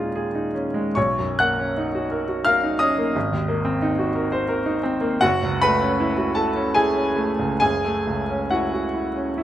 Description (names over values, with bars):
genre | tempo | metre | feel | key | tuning
classical, impressionist solo piano | 66-91 BPM | 3/4 | rubato | unclear | A4 = 439 Hz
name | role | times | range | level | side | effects
bright baby grand piano | solo | 0.0-9.4 s | F#1 to F#6 | -19 LUFS | equal | none
room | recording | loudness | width
light reverb | close, detailed microphones | -19 LUFS | side -12 dB against mid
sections
0.0-9.4 A section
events
none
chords
0.0 Db69/Eb; 1.0 Bmaj9; 3.2 Ab9; 5.2 F#m7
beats
0.16 | 0.96 1.77 2.46 | 3.16 3.82 4.49 | 5.22 6.00 6.76 | 7.61 8.50 9.36